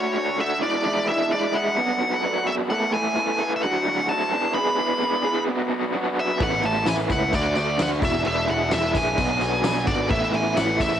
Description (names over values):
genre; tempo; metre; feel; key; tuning
indie rock; 130 BPM; 4/4; straight; unclear; A4 = 440 Hz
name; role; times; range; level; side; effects
nasal lead guitar with a parked wah; melody; 0.0-11.0 s; C#5 to B5; -24 LUFS; equal; overdrive, cassette tape
hollow soft pad; sustained chords; 0.0-11.0 s; D4 to D6; -35 LUFS; left 1 dB; none
raw garage guitar; riff; 0.0-11.0 s; E2 to A4; -23 LUFS; right 1 dB; overdrive, tremolo, cassette tape
picked electric bass; bass; 6.4-11.0 s; E1 to D2; -28 LUFS; left 1 dB; none
loose indie drum kit; drums; 6.4-10.9 s; crash cymbal, kick drum, snare drum; -28 LUFS; equal; none
tambourine; percussion; 6.9-10.9 s; none; -39 LUFS; left 7 dB; none
room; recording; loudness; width
light reverb, studio reverb; home recording on cassette; -20 LUFS; side -10 dB against mid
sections
0.0-11.0 A section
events
none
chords
0.0 Dmaj7; 0.6 E7sus4; 1.8 Bm7; 2.7 Asus2; 3.6 Dmaj7; 4.3 E5; 5.5 Bm; 6.4 Asus2; 7.3 Dmaj7; 8.0 E7sus4; 9.2 Bm7; 10.1 Asus2